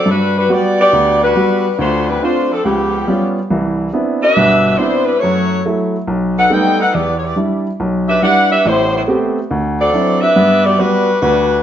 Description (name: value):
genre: jazz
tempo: 140 BPM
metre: 4/4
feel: swing 67% on 8ths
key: G major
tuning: A4 = 438 Hz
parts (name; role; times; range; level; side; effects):
- clear saxophone section; melody; 0.0-11.6 s; F3 to G5; -13 LUFS; left 1 dB; plate reverb
- warm baby grand piano; accompaniment; 0.1-11.6 s; G1 to G4; -15 LUFS; right 1 dB; none
room: moderate large studio reverb, RT60 1.1 s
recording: nothing above 7.6 kHz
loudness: -12 LUFS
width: side -10 dB against mid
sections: 0.1-11.6 A section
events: none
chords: 0.1 Gmaj7; 1.8 Dm7; 2.6 C#7#11; 3.5 Cmaj9; 5.2 F#m7; 6.1 B7b13; 6.9 Em7; 8.6 Am9; 9.5 D9; 10.4 Gmaj7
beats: | 0.07 0.50 0.93 1.35 | 1.78 2.21 2.64 3.07 | 3.50 3.93 4.36 4.78 | 5.21 5.64 6.07 6.50 | 6.93 7.36 7.78 8.21 | 8.64 9.07 9.50 9.92 | 10.35 10.78 11.21